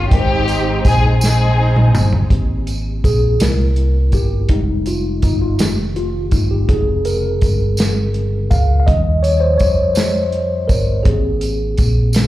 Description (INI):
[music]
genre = slow gospel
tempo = 55 BPM (dotted quarters)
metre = 6/8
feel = straight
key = Ab major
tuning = A4 = 444 Hz
[part]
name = warm studio string section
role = melody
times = 0.0-2.3 s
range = C4 to Ab4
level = -19 LUFS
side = left 1 dB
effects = slapback echo
[part]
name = mellow tine electric piano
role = accompaniment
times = 0.0-12.3 s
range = Ab2 to G5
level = -20 LUFS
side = left 1 dB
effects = medium stereo tremolo, slapback echo
[part]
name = fingered electric bass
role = bass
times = 0.0-12.3 s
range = F1 to F2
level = -16 LUFS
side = equal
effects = none
[part]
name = warm soul drum kit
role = drums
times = 0.1-12.3 s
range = hi-hat, kick drum, snare drum, toms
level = -16 LUFS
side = equal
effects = none
[part]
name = tambourine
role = percussion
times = 0.5-12.3 s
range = none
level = -30 LUFS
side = right 2 dB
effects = none
[sound]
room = small room ambience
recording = live gig heard through the venue's PA, club reverb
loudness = -13 LUFS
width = side -15 dB against mid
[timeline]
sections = 0.0-2.3 A section; 2.3-12.3 B section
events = drum fill 1.2-2.3; tine electric piano solo 2.3-12.3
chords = 0.1 Abmaj7; 3.4 C7; 4.5 Fm7; 5.6 F7b13; 6.7 Bbm7/F; 8.9 Eb7; 11.1 Abmaj7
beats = | 0.11 1.21 | 2.30 3.40 | 4.49 5.59 | 6.68 7.78 | 8.87 9.96 | 11.06 12.15